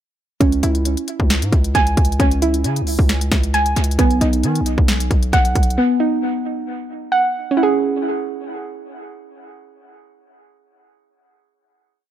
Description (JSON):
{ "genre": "hip hop, trap", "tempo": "134 BPM", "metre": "4/4", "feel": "half-time", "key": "C# minor", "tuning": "A4 = 440 Hz", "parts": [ { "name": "soft round pluck", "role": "arpeggios", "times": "0.4-11.0 s", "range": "B3 to G#5", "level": "-19 LUFS", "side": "right 2 dB", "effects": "chorus, low-pass filter, dub echo" }, { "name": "distorted 808-style bass", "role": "bass", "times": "0.4-5.8 s", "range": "B1 to D#3", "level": "-19 LUFS", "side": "equal", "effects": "distortion" }, { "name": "trap drum kit", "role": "drums", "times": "0.4-5.8 s", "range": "hi-hat, kick drum, snare drum", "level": "-19 LUFS", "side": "equal", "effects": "dub echo" } ], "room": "little or no reverb", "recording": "echo-heavy mix", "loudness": "-15 LUFS", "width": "side -11 dB against mid", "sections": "0.4-7.6 hook; 7.6-11.2 final chord", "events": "none", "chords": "0.4 C#m; 4.0 B; 7.6 C#m", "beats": "| 0.41 0.85 1.30 1.75 | 2.20 2.65 3.09 3.54 | 3.99 4.44 4.88 5.33 | 5.78 6.23 6.67 7.12 | 7.57 8.02 8.47 8.91 | 9.36 9.81 10.26 10.70" }